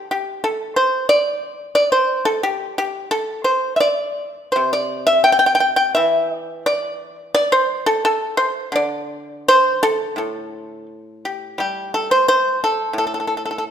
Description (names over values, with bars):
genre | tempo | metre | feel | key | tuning
chinese traditional, Chinese solo plucked strings | 87 BPM | 2/4 | rubato | D shang mode | A4 = 439 Hz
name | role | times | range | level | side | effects
pipa | solo | 0.0-13.7 s | A2 to G5 | -16 LUFS | equal | none
room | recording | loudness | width
moderate scoring stage reverb, RT60 1.8 s | minimal, uncompressed stereo recording | -16 LUFS | side -8 dB against mid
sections
0.0-10.2 A section; 10.2-13.7 B section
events
none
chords
none